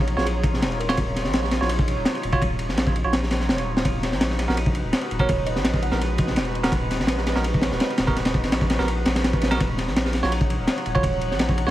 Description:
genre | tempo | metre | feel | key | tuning
drum and bass, jungle | 167 BPM | 4/4 | straight | Eb minor | A4 = 440 Hz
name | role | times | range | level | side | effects
warbly tape-like pad | sustained chords | 0.0-11.7 s | F3 to Db5 | -30 LUFS | equal | chorus, built-in reverb, vintage 12-bit sampler grit
saturated sub bass | bass | 0.0-11.7 s | Eb1 to Bb1 | -26 LUFS | equal | none
crunchy breakbeat drum kit | drums | 0.1-11.7 s | kick drum, ride cymbal, snare drum | -22 LUFS | equal | none
kalimba | melody | 0.2-1.2, 5.2-6.3, 11.0-11.7 s | Ab4 to Gb5 | -31 LUFS | right 4 dB | vintage 12-bit sampler grit, dub echo
bell-like tine electric piano | stabs | 0.2-11.7 s | Cb4 to Db5 | -30 LUFS | right 4 dB | vintage 12-bit sampler grit, dub echo
drifting glass-harmonics texture | texture | 9.9-11.7 s | Gb5 | -36 LUFS | left 8 dB | chorus, built-in reverb
room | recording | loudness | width
light reverb, small room ambience | vinyl crackle | -20 LUFS | side -14 dB against mid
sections
0.0-11.7 A section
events
none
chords
0.0 Ebm9; 3.9 Abm7/Eb; 9.6 Ebm9

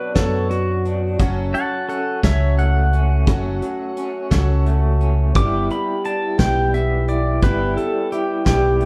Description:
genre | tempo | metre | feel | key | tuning
acoustic folk duo or small band | 58 BPM (dotted quarters) | 6/8 | straight | E dorian | A4 = 441 Hz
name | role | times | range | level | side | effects
pedal steel guitar | melody | 0.0-8.9 s | F#4 to D6 | -26 LUFS | equal | none
fingerpicked twelve-string acoustic guitar | accompaniment | 0.0-8.9 s | B2 to C#5 | -27 LUFS | equal | none
electric guitar through a small old amp | arpeggios | 0.0-8.9 s | F#3 to E4 | -30 LUFS | equal | tremolo
fingered electric bass | bass | 0.2-8.9 s | F#1 to F#2 | -21 LUFS | equal | none
soft brush drum kit | drums | 0.2-8.9 s | hi-hat, kick drum, snare drum | -21 LUFS | equal | none
room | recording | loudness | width
moderate studio reverb, RT60 0.8 s | heard from further back in the room | -19 LUFS | mono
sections
0.0-8.9 A section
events
pedal steel guitar solo 0.0-8.9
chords
0.0 Bmadd9; 1.2 F#m; 5.3 Em/G

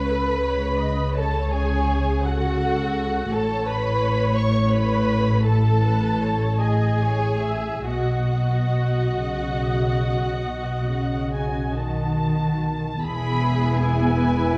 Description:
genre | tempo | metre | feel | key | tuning
classical, slow romantic movement for string orchestra | 45-58 BPM (dotted quarters) | 12/8 | rubato | E major from 3.3 s | A4 = 440 Hz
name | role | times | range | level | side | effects
muted symphonic violin section | melody | 0.0-14.6 s | F#5 to C#6 | -32 LUFS | equal | none
muted symphonic violin section | second line | 0.0-14.6 s | F#4 to C#5 | -30 LUFS | equal | none
muted studio viola section | accompaniment | 0.0-14.6 s | B3 to E5 | -32 LUFS | equal | none
muted chamber cello section | bass | 0.0-14.6 s | E2 to D#3 | -29 LUFS | equal | none
muted symphonic double bass section | bass | 0.0-14.6 s | E1 to C#2 | -26 LUFS | equal | none
room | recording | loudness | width
moderate recital hall reverb, RT60 1.4 s | dark, warm production | -22 LUFS | mono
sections
0.0-13.0 A section; 13.0-14.6 B section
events
none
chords
0.0 C#5; 3.3 Amaj9; 7.9 B; 13.0 E

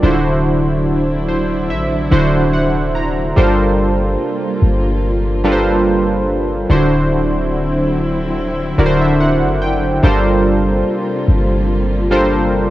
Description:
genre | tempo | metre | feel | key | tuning
R&B | 72 BPM | 4/4 | swing 54% on 16ths | G dorian | A4 = 440 Hz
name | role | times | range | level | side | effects
warm analog keys | accompaniment | 0.0-12.7 s | D3 to Bb5 | -15 LUFS | right 1 dB | chorus
warm studio string section | sustained chords | 0.0-12.7 s | C3 to F4 | -23 LUFS | left 1 dB | none
warm 808-style bass | bass | 0.0-12.7 s | D1 to A1 | -18 LUFS | equal | none
room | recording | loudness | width
light reverb | dark, warm production | -13 LUFS | side -15 dB against mid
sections
0.0-12.7 A section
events
synth keys fill 0.9-3.4, 8.4-10.0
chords
0.0 D9; 3.4 Gm11; 6.7 D9; 10.0 Gm11

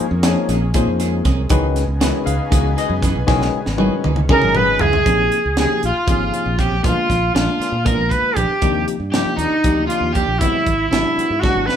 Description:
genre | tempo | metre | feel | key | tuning
electric jazz fusion | 236 BPM (eighths) | 7/8 | straight | Bb dorian | A4 = 440 Hz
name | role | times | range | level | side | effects
barky tine electric piano | accompaniment | 0.0-11.8 s | C3 to Ab5 | -23 LUFS | left 6 dB | none
analog string pad | sustained chords | 0.0-5.0 s | Db3 to Ab4 | -30 LUFS | equal | ensemble chorus
modern bright fingered electric bass | bass | 0.0-11.7 s | Ab1 to Db3 | -21 LUFS | equal | none
clean electric guitar | stabs | 0.2-11.8 s | Fb3 to Ab4 | -27 LUFS | right 6 dB | none
tight funk drum kit | drums | 0.2-11.8 s | hi-hat, kick drum, snare drum, toms | -20 LUFS | equal | none
bright reedy jazz flute | melody | 4.3-11.8 s | Eb4 to B4 | -19 LUFS | right 2 dB | none
crunchy overdriven guitar | second line | 4.3-11.8 s | Eb4 to Cb5 | -24 LUFS | equal | none
room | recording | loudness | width
moderate large studio reverb, RT60 0.8 s | band playing live in one room | -15 LUFS | side -9 dB against mid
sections
0.0-5.1 A section; 5.1-11.8 B section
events
drum fill 3.3-5.1, 11.4-11.8; tine electric piano fill 4.3-5.1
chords
0.0 Bbm9; 1.5 Dbm9; 5.1 Bbm9; 6.8 Bb7b9; 8.6 Ebmaj9; 10.4 Ab7alt

